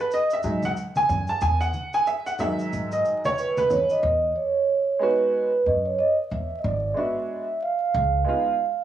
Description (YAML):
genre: hip hop, jazz-hop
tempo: 92 BPM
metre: 4/4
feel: swing 60% on 16ths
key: E major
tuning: A4 = 440 Hz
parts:
  - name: clear upright piano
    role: accompaniment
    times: 0.0-8.5 s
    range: D#3 to A5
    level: -24 LUFS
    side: right 1 dB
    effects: cassette tape
  - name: tube shaker and congas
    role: percussion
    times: 0.1-4.0 s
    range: none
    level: -35 LUFS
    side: left 1 dB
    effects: none
  - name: upright bass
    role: bass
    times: 0.4-8.2 s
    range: G#1 to G#2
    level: -28 LUFS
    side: equal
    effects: none
  - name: vibraphone with soft mallets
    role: melody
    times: 3.4-8.8 s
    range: B4 to F5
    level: -22 LUFS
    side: right 3 dB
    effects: analog delay
room: moderate spring reverb, RT60 1.2 s, small room ambience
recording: home recording on cassette, vinyl crackle, small room reverb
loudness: -21 LUFS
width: side -11 dB against mid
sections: 0.0-4.0 A section; 4.0-8.8 B section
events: upright piano solo 0.0-4.0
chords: 0.0 Emaj7; 6.6 G#m7b5; 7.9 C#7